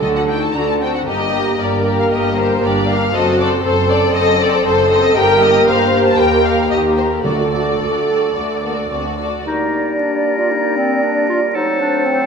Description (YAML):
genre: quick classical-period movement for symphony orchestra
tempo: 116 BPM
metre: 4/4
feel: rubato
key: G minor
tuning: A4 = 439 Hz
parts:
  - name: muted studio violin section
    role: melody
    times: 0.0-8.9 s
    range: C5 to Bb5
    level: -20 LUFS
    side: left 3 dB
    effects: none
  - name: muted studio violin section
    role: second line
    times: 0.0-9.5 s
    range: F#4 to D5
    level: -21 LUFS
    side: left 3 dB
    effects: none
  - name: muted studio viola section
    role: accompaniment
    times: 0.0-9.2 s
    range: D4 to C5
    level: -18 LUFS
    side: right 3 dB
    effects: none
  - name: warm French horn section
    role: sustained chords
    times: 0.0-12.3 s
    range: F#3 to A4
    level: -20 LUFS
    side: left 3 dB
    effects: none
  - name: muted studio cello section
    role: bass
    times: 0.0-9.4 s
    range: D2 to D3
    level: -24 LUFS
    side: right 3 dB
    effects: none
  - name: muted studio double bass section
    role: bass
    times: 0.0-9.4 s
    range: F#1 to Eb2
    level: -26 LUFS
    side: right 3 dB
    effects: none
  - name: timpani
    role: percussion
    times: 0.0-0.8, 7.2-8.0 s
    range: D3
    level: -27 LUFS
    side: right 1 dB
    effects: none
  - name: clear oboe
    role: second line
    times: 9.5-12.3 s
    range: A4 to Bb4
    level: -21 LUFS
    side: left 2 dB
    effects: none
  - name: small flute group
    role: second line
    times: 9.5-12.3 s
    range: C5 to D5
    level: -22 LUFS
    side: equal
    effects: none
  - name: warm clarinet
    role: second line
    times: 9.5-12.3 s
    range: C4 to F4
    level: -20 LUFS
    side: left 3 dB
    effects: none
  - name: mellow bassoon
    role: accompaniment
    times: 9.5-12.3 s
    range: F#3 to G3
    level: -20 LUFS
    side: right 5 dB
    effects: none
room: wet scoring stage reverb, RT60 2.1 s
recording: minimal, uncompressed stereo recording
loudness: -13 LUFS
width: side -6 dB against mid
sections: 0.0-9.5 A section; 9.5-12.3 A section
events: none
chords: 0.0 D; 1.1 Gm; 3.1 F#dim; 5.2 Gm; 6.2 Eb; 7.3 D; 9.5 Gm; 11.5 F#dim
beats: 0.02 0.55 | 1.08 1.60 2.12 2.63 | 3.14 3.65 4.16 4.66 | 5.17 5.68 6.19 6.71 | 7.26 7.81 8.37 8.92 | 9.46 9.99 10.51 11.03 | 11.54 12.06